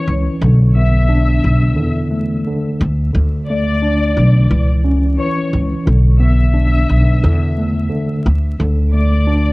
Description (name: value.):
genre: hip hop.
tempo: 88 BPM.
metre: 4/4.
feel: swing 59% on 16ths.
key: B minor.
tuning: A4 = 440 Hz.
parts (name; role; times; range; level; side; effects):
clear studio violin section; melody; 0.0-9.5 s; C#5 to E6; -24 LUFS; left 4 dB; high-pass filter, low-pass filter, cassette tape, tape echo.
mellow tine electric piano; accompaniment; 0.0-9.5 s; D3 to D4; -19 LUFS; equal; medium stereo tremolo, high-pass filter, low-pass filter, cassette tape.
upright bass; bass; 0.1-9.5 s; B1 to E2; -13 LUFS; equal; none.
room: light reverb.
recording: home recording on cassette, vinyl crackle.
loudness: -12 LUFS.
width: side -22 dB against mid.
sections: 0.0-9.5 A section.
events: none.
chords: 0.4 Bm; 1.8 E7sus4; 2.8 D5; 4.5 C#m; 5.9 Bm; 7.2 E7sus4; 8.3 D5.